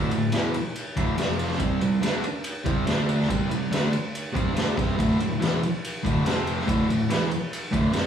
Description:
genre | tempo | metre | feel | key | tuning
garage rock duo or trio | 142 BPM | 4/4 | straight | D minor | A4 = 440 Hz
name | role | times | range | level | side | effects
fuzz guitar | riff | 0.0-8.1 s | D2 to D4 | -24 LUFS | equal | distortion
raw garage drum kit | drums | 0.1-8.0 s | kick drum, ride cymbal, snare drum | -27 LUFS | equal | none
room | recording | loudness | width
moderate large studio reverb, RT60 1.2 s | band playing live in one room, studio reverb | -22 LUFS | side -8 dB against mid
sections
0.0-8.1 A section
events
none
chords
0.0 D5; 1.2 F5; 1.6 C5; 2.9 D5; 3.3 C5; 5.0 D5; 6.2 F5; 6.7 D5

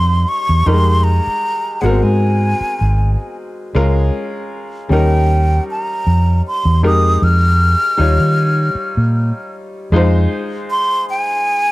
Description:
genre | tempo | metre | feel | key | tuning
lush 1970s-style soul | 78 BPM | 4/4 | swing 54% on 16ths | F minor | A4 = 435 Hz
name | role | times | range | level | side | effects
breathy concert flute | melody | 0.0-11.7 s | Gb5 to F6 | -17 LUFS | equal | none
clear grand piano | accompaniment | 0.0-11.7 s | G3 to Db5 | -21 LUFS | left 2 dB | none
vintage muted fingered electric bass | bass | 0.0-10.3 s | Ab1 to Eb3 | -13 LUFS | equal | none
room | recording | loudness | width
small room ambience | none | -13 LUFS | side -18 dB against mid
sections
0.0-9.9 A section; 9.9-11.7 B section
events
none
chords
0.0 Eb7; 0.7 Fm11; 1.8 Ab9; 3.7 Db6; 4.9 Eb7; 6.8 Fm11; 8.0 Eb9; 9.9 Fm7

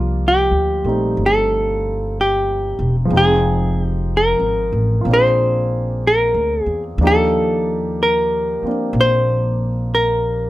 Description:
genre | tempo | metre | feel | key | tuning
jazz ballad | 62 BPM | 4/4 | swing 68% on 8ths | unclear | A4 = 440 Hz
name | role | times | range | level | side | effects
hollow-body jazz guitar | melody | 0.0-10.5 s | F4 to C5 | -17 LUFS | equal | none
warm concert grand piano | accompaniment | 0.0-10.5 s | F3 to G5 | -23 LUFS | left 1 dB | none
upright bass | bass | 0.0-10.5 s | E1 to E2 | -20 LUFS | equal | none
room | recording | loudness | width
little or no reverb | close, detailed microphones | -15 LUFS | side -16 dB against mid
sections
0.0-10.5 A section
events
none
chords
0.0 Cm11; 3.1 Fm7; 5.1 Bb7; 7.0 Ebmaj7

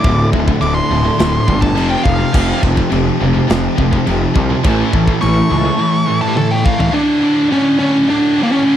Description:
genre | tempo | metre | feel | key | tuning
heavy metal | 104 BPM | 4/4 | straight | unclear | A4 = 440 Hz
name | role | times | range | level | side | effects
high-gain lead guitar | melody | 0.0-8.8 s | Bb3 to D6 | -15 LUFS | equal | distortion, slapback echo
rich studio string section | sustained chords | 0.0-6.9 s | D3 to A4 | -26 LUFS | left 2 dB | none
scooped high-gain guitar | riff | 0.0-8.8 s | D2 to A3 | -18 LUFS | equal | distortion
sludgy distorted guitar | riff | 0.0-6.9 s | D2 to A3 | -20 LUFS | equal | overdrive
tight metal drum kit | drums | 0.0-6.9 s | china cymbal, crash cymbal, kick drum, snare drum, toms | -18 LUFS | equal | none
fuzz picked electric bass | bass | 0.1-5.7 s | D1 to C#2 | -16 LUFS | equal | overdrive
room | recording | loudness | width
studio ambience | dry, close 1970s-style studio recording | -12 LUFS | side -10 dB against mid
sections
0.0-6.9 A section; 6.9-8.8 B section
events
lead electric guitar solo 0.0-6.9; drum fill 6.4-6.9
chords
0.0 D5; 1.8 F5; 4.6 A; 6.9 D5

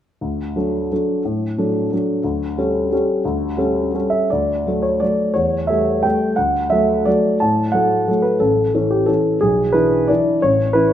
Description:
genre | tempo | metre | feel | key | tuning
classical, piano waltz | 176 BPM | 3/4 | uneven beats, rubato | D major | A4 = 436 Hz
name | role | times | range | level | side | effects
warm grand piano | solo | 0.2-10.9 s | A1 to A5 | -16 LUFS | equal | none
room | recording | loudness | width
moderate recital hall reverb, RT60 1.6 s | none | -16 LUFS | side -10 dB against mid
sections
0.2-4.3 A section; 4.3-10.9 B section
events
none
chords
0.2 D; 2.3 A7/D; 4.3 D; 5.4 A7/E; 6.4 D; 8.4 A; 9.4 E7/B; 10.4 A

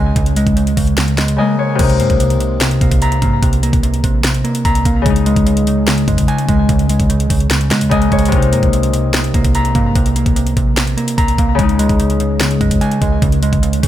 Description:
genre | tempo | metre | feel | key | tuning
hip hop, trap | 147 BPM | 4/4 | half-time | C phrygian | A4 = 441 Hz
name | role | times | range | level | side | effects
Celtic harp | accompaniment | 0.0-13.9 s | C3 to Eb5 | -19 LUFS | left 6 dB | low-pass filter
mellow electric guitar | arpeggios | 0.0-13.9 s | C3 to Bb5 | -16 LUFS | right 2 dB | low-pass filter, ping-pong delay
clean 808-style bass | bass | 0.0-13.9 s | Bb1 to Db3 | -18 LUFS | equal | none
trap drum kit | drums | 0.2-13.9 s | crash cymbal, finger snaps, hi-hat, kick drum, snare drum | -17 LUFS | equal | none
room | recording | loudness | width
little or no reverb | none | -12 LUFS | side -12 dB against mid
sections
0.0-1.8 A section; 1.8-13.9 B section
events
silent gap 1.4-1.8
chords
0.0 Dbsus2; 1.8 Cm7; 5.1 Dbsus2; 8.3 Cm7; 11.6 Dbsus2

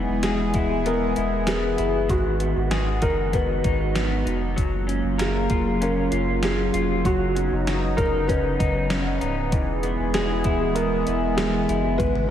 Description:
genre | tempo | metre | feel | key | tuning
dream pop | 97 BPM | 4/4 | straight | unclear | A4 = 439 Hz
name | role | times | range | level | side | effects
phased analog pad | sustained chords | 0.0-12.3 s | C#3 to G#4 | -26 LUFS | equal | phaser, chorus
electric guitar through a small old amp | arpeggios | 0.0-12.3 s | G#2 to A#4 | -28 LUFS | left 1 dB | analog chorus, analog delay
warm sub bass | bass | 0.0-12.3 s | C#1 to G#1 | -27 LUFS | equal | none
felt-muted upright piano | melody | 0.2-12.3 s | F#4 to B4 | -27 LUFS | equal | analog delay
gated 80s digital drum machine | drums | 0.2-12.3 s | hi-hat, kick drum, snare drum, toms | -27 LUFS | equal | gated reverb, gated reverb snare, overdrive
room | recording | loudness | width
moderate lush hall reverb, RT60 2.5 s | dreamy mix soaked in reverb | -20 LUFS | side -10 dB against mid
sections
0.0-12.3 A section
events
drum fill 12.0-12.3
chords
0.0 E; 2.1 G#m7; 4.6 F#maj7; 7.0 Badd9; 9.5 E

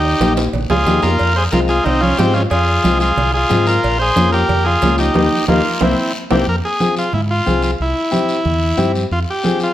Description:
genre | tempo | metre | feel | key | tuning
latin, cumbia | 182 BPM | 4/4 | straight | F minor, F harmonic minor from 6.5 s | A4 = 437 Hz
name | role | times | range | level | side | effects
combo organ | melody | 0.0-9.7 s | Bb3 to C5 | -17 LUFS | equal | slapback echo
fingered electric bass | bass | 0.0-9.2 s | Bb1 to Ab2 | -19 LUFS | equal | none
clear upright piano | accompaniment | 0.2-9.7 s | G3 to Ab4 | -20 LUFS | left 4 dB | none
congas | percussion | 0.2-9.6 s | none | -22 LUFS | right 2 dB | none
cowbell and timbales | percussion | 0.2-6.4 s | none | -26 LUFS | right 4 dB | none
guiro | percussion | 0.2-9.7 s | none | -29 LUFS | left 3 dB | none
room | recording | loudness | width
light reverb | none | -13 LUFS | side -12 dB against mid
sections
0.0-6.5 A section; 6.5-9.7 B section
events
drum fill 0.2-1.2, 6.0-6.5; band accent 5.2-6.5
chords
0.0 Bbm; 1.2 Fm; 3.8 Bbm; 5.2 Eb; 5.8 C7; 6.5 Fm; 7.8 C; 9.1 Fm

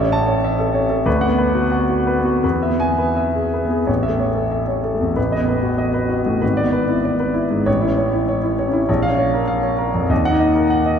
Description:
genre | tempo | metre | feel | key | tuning
classical, romantic character piece for solo piano | 80-100 BPM | 2/4 | rubato | A major | A4 = 442 Hz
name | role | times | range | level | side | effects
warm concert grand piano | solo | 0.0-11.0 s | G#1 to A5 | -16 LUFS | equal | none
room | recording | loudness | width
wet church reverb, RT60 3.4 s | none | -16 LUFS | side -7 dB against mid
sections
0.0-3.9 A section; 3.9-11.0 A section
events
none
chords
0.0 A; 1.1 Bm/D; 2.4 E; 3.9 A; 5.2 B7/A; 6.4 E7/G#; 7.7 A; 8.9 Bbm; 10.1 Ebm

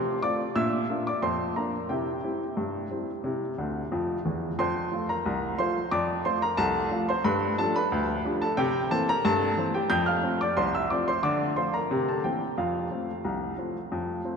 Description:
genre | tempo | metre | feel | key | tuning
ragtime piano | 90 BPM | 2/4 | straight | F major | A4 = 440 Hz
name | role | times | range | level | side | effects
warm upright piano | solo | 0.0-14.4 s | C2 to G6 | -25 LUFS | equal | none
room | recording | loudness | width
wet cathedral reverb, RT60 4.8 s | recorded in a church or concert hall | -25 LUFS | side -6 dB against mid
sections
0.0-4.6 A section; 4.6-14.4 A section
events
upright piano fill 3.6-4.6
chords
0.0 F; 0.6 Bb; 1.9 C; 4.6 F; 7.2 G7; 8.6 C7; 9.9 F; 11.2 Dm; 11.9 C7; 12.6 F

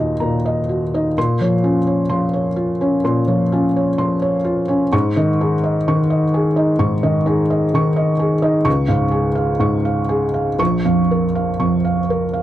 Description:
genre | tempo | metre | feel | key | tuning
neoclassical minimalist piano | 64 BPM | 4/4 | rubato | Bb minor | A4 = 440 Hz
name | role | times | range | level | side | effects
felt-muted upright piano | solo | 0.0-12.4 s | Bb1 to Db6 | -15 LUFS | equal | none
room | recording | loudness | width
light reverb | dry, close 1970s-style studio recording | -15 LUFS | side -13 dB against mid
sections
0.0-12.4 A section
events
none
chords
0.0 Ebm; 1.2 Bbmadd9; 4.9 Absus4; 8.7 Db; 10.6 Bbm

